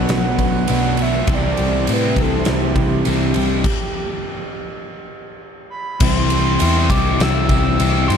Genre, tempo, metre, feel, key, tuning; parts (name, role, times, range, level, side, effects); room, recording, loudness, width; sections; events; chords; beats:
rock, shoegaze and dream pop; 101 BPM; 4/4; straight; A4 = 440 Hz
breathy flute-like synth lead; melody; 0.0-8.2 s; G4 to E6; -24 LUFS; right 4 dB; chorus, tape echo
twelve-string electric guitar; arpeggios; 0.0-8.2 s; E3 to G4; -28 LUFS; right 9 dB
cranked stack guitar; riff; 0.0-3.6 s; B2 to C4; -23 LUFS; equal; overdrive
crunchy overdriven guitar; riff; 0.0-3.6 s; B2 to G4; -25 LUFS; right 12 dB; reverse reverb
overdriven semi-hollow guitar; riff; 0.0-8.2 s; B2 to G4; -22 LUFS; left 13 dB; wide subtle chorus
vintage muted picked electric bass; bass; 0.0-8.2 s; B1 to A2; -20 LUFS; equal
huge arena drum kit; drums; 0.1-8.2 s; crash cymbal, kick drum, ride cymbal, snare drum; -22 LUFS; equal
tambourine; percussion; 0.7-7.9 s; -36 LUFS; right 18 dB
light reverb, small room ambience; dark, warm production; -15 LUFS; side -7 dB against mid
0.0-6.0 A section; 6.0-8.2 B section
stop 3.7-6.0
0.0 Bm7; 1.3 C69; 6.0 C
0.10 0.69 | 1.28 1.87 2.47 3.06 | 3.65 4.24 4.84 5.43 | 6.02 6.61 7.20 7.79